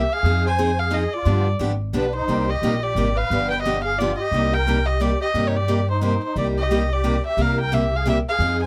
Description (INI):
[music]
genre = acoustic string swing (jazz manouche)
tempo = 176 BPM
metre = 3/4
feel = swing 60% on 8ths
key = C minor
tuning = A4 = 440 Hz
[part]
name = warm violin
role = melody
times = 0.0-8.7 s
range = B4 to Ab5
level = -26 LUFS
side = equal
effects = none
[part]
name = musette accordion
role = second line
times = 0.0-8.7 s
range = D4 to C5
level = -32 LUFS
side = equal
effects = none
[part]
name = upright bass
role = bass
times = 0.0-8.7 s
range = G1 to G2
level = -25 LUFS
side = equal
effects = none
[part]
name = picked steel-string acoustic guitar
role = accompaniment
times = 0.2-8.6 s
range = C3 to Ab4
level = -26 LUFS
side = equal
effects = none
[sound]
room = little or no reverb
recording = close, detailed microphones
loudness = -21 LUFS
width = mono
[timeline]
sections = 0.0-6.4 A section; 6.4-8.7 A section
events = none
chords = 0.2 Fm7; 1.3 G7; 2.3 Cm7; 3.3 G7; 4.3 Cm7; 7.4 C7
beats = | 0.25 0.59 0.93 | 1.27 1.61 1.95 | 2.29 2.63 2.97 | 3.31 3.65 3.99 | 4.33 4.67 5.01 | 5.35 5.69 6.03 | 6.37 6.71 7.05 | 7.39 7.73 8.07 | 8.41